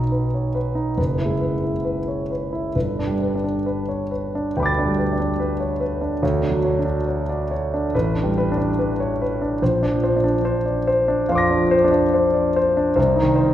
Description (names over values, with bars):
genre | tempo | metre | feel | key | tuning
classical, impressionist solo piano | 70 BPM | 4/4 | uneven beats, rubato | unclear | A4 = 440 Hz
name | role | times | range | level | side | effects
warm grand piano | solo | 0.0-13.5 s | F#1 to A#6 | -18 LUFS | equal | none
room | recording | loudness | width
wet concert hall reverb, RT60 2.0 s | heard from further back in the room | -18 LUFS | side -12 dB against mid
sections
0.0-13.5 A section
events
none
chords
0.0 B; 1.0 F#11; 2.7 Gadd9; 6.2 Dmaj7; 7.9 A11; 9.6 A#add9; 13.0 Cm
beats
0.12 0.98 1.85 | 2.75 3.66 4.56 5.39 | 6.22 7.07 7.94 8.78 | 9.61 10.44 11.28 12.13 | 12.97